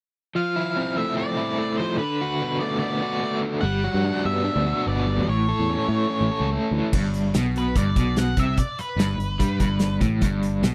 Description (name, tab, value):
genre	indie rock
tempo	146 BPM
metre	4/4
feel	straight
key	G lydian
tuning	A4 = 440 Hz
part	octave-fuzz lead guitar	melody	0.4-10.0 s	B4 to F#5	-31 LUFS	equal	distortion
part	overdriven electric guitar	riff	0.4-10.7 s	G2 to A4	-26 LUFS	equal	tremolo
part	picked electric bass	bass	3.6-10.7 s	G1 to A2	-27 LUFS	equal	none
part	loose indie drum kit	drums	6.9-10.7 s	crash cymbal, hi-hat, kick drum, snare drum	-27 LUFS	equal	none
room	little or no reverb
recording	none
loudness	-23 LUFS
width	mono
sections	0.4-6.9 A section; 6.9-10.7 B section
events	none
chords	0.4 Fmaj7; 2.0 D6; 3.6 Gmaj7; 5.3 A; 6.9 G